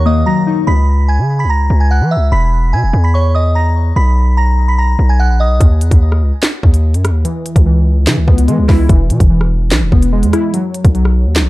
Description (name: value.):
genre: hip hop, drill.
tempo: 146 BPM.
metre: 4/4.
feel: half-time.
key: unclear.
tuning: A4 = 442 Hz.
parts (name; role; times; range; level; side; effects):
glassy synth bell; melody; 0.0-5.6 s; Db5 to Cb7; -18 LUFS; right 2 dB; chorus, low-pass filter, ping-pong delay.
warbly lo-fi synth keys; accompaniment; 0.0-0.7, 7.2-11.5 s; Eb3 to Fb4; -16 LUFS; left 2 dB; chorus, low-pass filter.
distorted 808-style bass; bass; 0.0-11.5 s; E1 to Fb3; -11 LUFS; equal; distortion.
drill drum kit; drums; 5.6-11.5 s; handclaps, hi-hat, kick drum, rim click, snare drum; -11 LUFS; equal; none.
room: little or no reverb.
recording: dark, warm production.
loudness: -10 LUFS.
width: side -18 dB against mid.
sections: 0.0-11.5 A section.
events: none.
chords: 0.0 Ebm; 0.7 Db7(no3); 2.3 E; 4.0 Bmaj7(no3); 5.6 N.C.; 7.2 Dbm7; 8.9 E; 10.5 B.